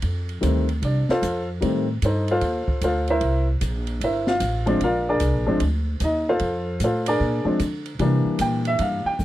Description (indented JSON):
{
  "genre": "jazz piano trio",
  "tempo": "151 BPM",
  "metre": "4/4",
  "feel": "swing 65% on 8ths",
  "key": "unclear",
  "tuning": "A4 = 445 Hz",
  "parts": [
    { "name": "upright bass", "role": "bass", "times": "0.0-9.2 s", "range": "G1 to D3", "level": "-24 LUFS", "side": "equal", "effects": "none" },
    { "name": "open jazz drum kit", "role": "drums", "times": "0.0-9.2 s", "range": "hi-hat, kick drum, ride cymbal, snare drum", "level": "-33 LUFS", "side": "right 1 dB", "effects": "none" },
    { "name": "warm baby grand piano", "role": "melody", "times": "0.4-9.2 s", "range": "Eb3 to G5", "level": "-22 LUFS", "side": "left 1 dB", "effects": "none" }
  ],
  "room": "little or no reverb",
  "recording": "dry, close 1970s-style studio recording",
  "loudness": "-20 LUFS",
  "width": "side -14 dB against mid",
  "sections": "0.0-9.2 A section",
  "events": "grand piano solo 0.0-9.2",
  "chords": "0.0 F7; 3.2 C7; 4.8 Bb7; 6.4 F; 7.2 Bb7; 8.0 C7"
}